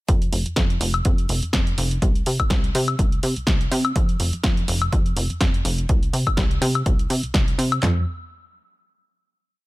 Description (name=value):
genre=filtered disco house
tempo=124 BPM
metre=4/4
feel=swing 55% on 16ths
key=unclear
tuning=A4 = 442 Hz
part: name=plucky analog bass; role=bass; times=0.1-8.1 s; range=F1 to C3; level=-23 LUFS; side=equal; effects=sidechain pumping, low-pass filter
part: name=punchy analog drum machine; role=drums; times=0.1-8.0 s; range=handclaps, kick drum, snare drum, toms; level=-21 LUFS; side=equal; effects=none
part: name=punchy analog drum machine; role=drums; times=0.1-7.8 s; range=hi-hat, snare drum, woodblock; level=-26 LUFS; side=left 1 dB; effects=sidechain pumping on hats, sidechain pumping on perc
room=little or no reverb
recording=none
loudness=-19 LUFS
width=side -19 dB against mid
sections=0.1-7.8 groove; 7.8-9.7 final note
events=filter sweep on analog synth bass 0.1-7.8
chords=none